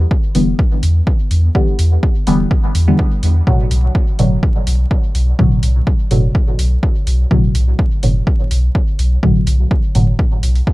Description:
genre	dub techno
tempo	125 BPM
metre	4/4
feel	straight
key	unclear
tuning	A4 = 440 Hz
part	soft dub sub bass	bass	0.0-10.6 s	E1 to E2	-14 LUFS	equal	tube saturation, sidechain pumping
part	electronic kick drum	drums	0.1-10.7 s	none	-15 LUFS	equal	overdrive
part	deep mellow chord stab	stabs	0.3-10.1 s	A2 to B3	-18 LUFS	equal	chorus, phaser, sidechain pumping, dub echo
part	electronic hi-hat	drums	0.3-10.6 s	none	-28 LUFS	equal	overdrive
room	little or no reverb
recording	dark, warm production, vinyl crackle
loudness	-12 LUFS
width	side -19 dB against mid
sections	0.0-10.7 A section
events	none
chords	0.0 Em7; 3.5 Bm7

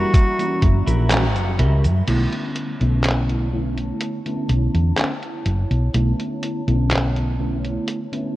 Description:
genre	vaporwave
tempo	62 BPM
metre	4/4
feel	straight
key	B minor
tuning	A4 = 440 Hz
part	breathy tenor saxophone	melody	0.0-1.1 s	F#4	-27 LUFS	equal	tape echo
part	mellow FM electric piano	accompaniment	0.0-8.4 s	D3 to F#5	-25 LUFS	equal	ensemble chorus, tape echo
part	warbly tape-like pad	sustained chords	0.0-8.4 s	G3 to A#5	-34 LUFS	right 1 dB	chorus, built-in reverb
part	clean electric guitar	riff	0.0-2.0 s	E4 to A#5	-31 LUFS	right 2 dB	lush chorus, tape echo
part	woody fretless electric bass	bass	0.0-7.8 s	F#1 to F#2	-19 LUFS	equal	tube saturation
part	detuned 8-bit digital drum machine	drums	0.1-8.3 s	cabasa, crash cymbal, handclaps, hi-hat	-26 LUFS	equal	none
part	electronic kick drum	drums	0.1-0.8 s	none	-14 LUFS	equal	none
room	light reverb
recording	worn, warbling old tape, cassette tape, warbly pitch drift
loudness	-18 LUFS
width	side -16 dB against mid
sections	0.0-2.1 A section; 2.1-8.4 B section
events	clean electric guitar fill 0.6-2.1; kick drops out 1.1-2.1; band accent 1.1-1.6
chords	0.0 F#7b9; 2.1 Bm11

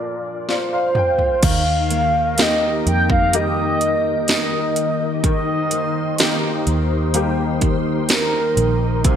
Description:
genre	pop ballad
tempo	63 BPM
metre	4/4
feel	straight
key	Eb major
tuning	A4 = 440 Hz
part	mellow horn-like synth lead	melody	0.0-9.2 s	Bb4 to G5	-20 LUFS	equal	chorus
part	warm baby grand piano	accompaniment	0.0-9.2 s	Bb2 to G5	-25 LUFS	left 3 dB	ensemble chorus
part	house drum kit	drums	0.5-9.2 s	crash cymbal, hi-hat, kick drum, snare drum, toms	-20 LUFS	right 1 dB	gated reverb
part	glassy FM pad	sustained chords	1.8-9.2 s	C3 to C5	-25 LUFS	left 2 dB	ensemble chorus, built-in reverb, phaser
part	fingerpicked steel-string acoustic guitar	arpeggios	1.4-9.2 s	C3 to G4	-27 LUFS	right 6 dB	none
part	vintage muted fingered electric bass	bass	1.4-9.2 s	Bb1 to F2	-22 LUFS	equal	none
room	light reverb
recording	bright 1980s-style digital production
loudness	-16 LUFS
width	side -8 dB against mid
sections	0.0-1.4 A section; 1.4-9.2 B section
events	grand piano fill 0.0-1.4; drum fill 0.5-1.4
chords	0.0 Bbadd9; 1.4 Eb

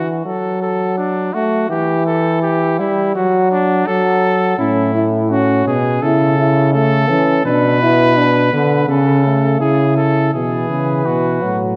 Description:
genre	classical, imitative canzona for brass ensemble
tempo	83 BPM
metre	4/4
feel	straight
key	unclear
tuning	A4 = 440 Hz
part	warm trumpet	second line	0.0-11.6 s	D4 to B4	-21 LUFS	equal	none
part	warm euphonium	accompaniment	0.0-11.8 s	E3 to E4	-19 LUFS	equal	none
part	mellow bass trombone	bass	4.6-11.8 s	A2 to E3	-18 LUFS	equal	none
part	mellow cornet	melody	10.3-11.7 s	B4	-25 LUFS	equal	none
room	moderate concert hall reverb, RT60 1.9 s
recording	none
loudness	-15 LUFS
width	mono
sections	0.0-10.3 A section; 10.3-11.8 B section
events	none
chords	0.3 D/F#; 1.7 Emadd11; 3.2 D/F#; 4.6 A; 6.0 A/C#; 7.5 Bmadd11; 8.9 A/C#; 10.3 B5

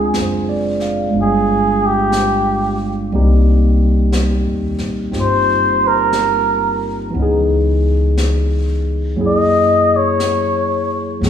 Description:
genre	jazz ballad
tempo	60 BPM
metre	4/4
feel	swing 67% on 8ths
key	unclear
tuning	A4 = 440 Hz
part	trumpet with cup mute	melody	0.0-10.9 s	G4 to Eb5	-16 LUFS	equal	none
part	barky tine electric piano	accompaniment	0.0-11.3 s	Fb3 to F5	-18 LUFS	equal	overdrive
part	upright bass	bass	0.0-11.3 s	Gb1 to Ab2	-18 LUFS	equal	none
part	jazz brush drum kit	drums	0.1-11.3 s	brushed snare drum, hi-hat, snare drum	-28 LUFS	left 3 dB	none
room	wet recital hall reverb, RT60 1.7 s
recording	recorded in a church or concert hall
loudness	-13 LUFS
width	side -9 dB against mid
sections	0.0-11.3 A section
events	muted trumpet solo 0.0-11.3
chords	0.0 Dm7b5; 1.1 G7b9; 3.1 Cm7; 7.1 Dbm7; 9.2 Gb9

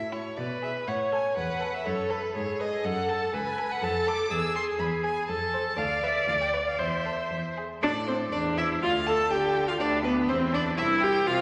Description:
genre	quick classical-period movement for string quartet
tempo	122 BPM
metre	2/4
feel	straight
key	A minor from 3.8 s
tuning	A4 = 441 Hz
part	rich violin	melody	0.0-11.4 s	A4 to E6	-36 LUFS	equal	none
part	rich cello	bass	0.0-11.4 s	C2 to D3	-37 LUFS	equal	none
part	rich violin	second line	0.1-11.4 s	E4 to A5	-37 LUFS	equal	none
part	rich viola	accompaniment	0.4-11.4 s	B3 to D5	-29 LUFS	equal	none
room	wet concert hall reverb, RT60 2.2 s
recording	none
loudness	-28 LUFS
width	mono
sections	0.0-7.8 A section; 7.8-11.4 B section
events	none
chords	0.4 G#dim/B; 0.9 A; 1.9 F#m; 2.4 G#madd11; 2.8 F#m; 3.8 Dm/F; 4.3 E; 5.3 F; 5.8 Dm69; 6.8 Am/E; 7.8 Am; 8.8 D5; 9.8 E5/D; 10.8 Cadd11

